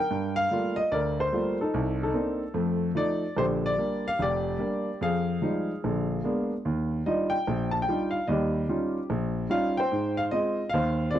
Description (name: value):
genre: solo jazz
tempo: 147 BPM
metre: 4/4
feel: swing 66% on 8ths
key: G minor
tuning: A4 = 440 Hz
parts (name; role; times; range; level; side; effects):
- clear concert grand piano; solo; 0.0-11.2 s; F1 to A5; -25 LUFS; equal; none
room: studio ambience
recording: dry, close 1970s-style studio recording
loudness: -25 LUFS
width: side -11 dB against mid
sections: 0.1-11.2 A section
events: none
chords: 0.1 Gm9; 1.7 Cm9; 2.5 F7; 3.4 Bb6; 5.0 Fm9; 5.8 Bb7b9; 6.6 Ebmaj9; 8.3 Eb9; 9.9 Ab6